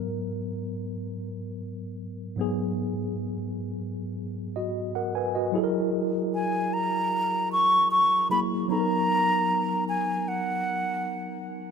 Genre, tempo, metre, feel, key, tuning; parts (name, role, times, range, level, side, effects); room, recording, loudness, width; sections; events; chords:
R&B; 76 BPM; 4/4; straight; G# minor; A4 = 439 Hz
mellow tine electric piano; accompaniment; 0.0-11.7 s; G#2 to G#5; -28 LUFS; equal; medium stereo tremolo
mellow silver concert flute; melody; 6.3-11.5 s; F#5 to C#6; -24 LUFS; equal; ping-pong delay
light reverb, small room reverb; -24 LUFS; side -6 dB against mid
0.0-5.5 A section; 5.5-11.7 B section
0.0 G#m9; 5.5 F#9; 8.7 Bmaj7/F#